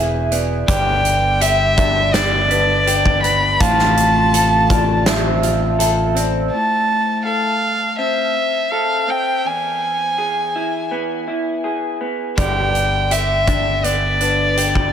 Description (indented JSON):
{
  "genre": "post-rock",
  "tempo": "82 BPM",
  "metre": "4/4",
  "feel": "straight",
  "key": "A minor",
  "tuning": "A4 = 440 Hz",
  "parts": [
    { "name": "pedal steel guitar", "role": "sustained chords", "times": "0.0-6.5, 12.4-14.9 s", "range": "B2 to G4", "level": "-28 LUFS", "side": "left 2 dB", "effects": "wide subtle chorus" },
    { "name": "electric guitar through a small old amp", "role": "arpeggios", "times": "0.0-14.9 s", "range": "E2 to A4", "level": "-22 LUFS", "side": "left 3 dB", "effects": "wide subtle chorus, tape echo" },
    { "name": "vibraphone with medium hard mallets", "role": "arpeggios", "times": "0.0-6.5, 12.4-14.9 s", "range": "B4 to F5", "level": "-24 LUFS", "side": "right 4 dB", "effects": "tape echo" },
    { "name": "modern bright fingered electric bass", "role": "bass", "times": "0.0-6.5, 12.4-14.9 s", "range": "E1 to A1", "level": "-21 LUFS", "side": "equal", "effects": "none" },
    { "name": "big rock drum kit", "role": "drums", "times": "0.3-6.3, 12.4-14.9 s", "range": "hi-hat, kick drum, snare drum", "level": "-21 LUFS", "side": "equal", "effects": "none" },
    { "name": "rich violin", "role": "melody", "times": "0.7-14.9 s", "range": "D5 to B5", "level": "-18 LUFS", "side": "equal", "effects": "tape echo" }
  ],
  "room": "light reverb, small room ambience",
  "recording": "none",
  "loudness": "-15 LUFS",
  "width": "side -8 dB against mid",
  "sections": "0.0-6.5 A section; 6.5-14.9 A section",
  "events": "none",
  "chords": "0.0 E; 0.7 G; 3.6 F/A; 6.5 Am; 9.5 E; 12.4 G"
}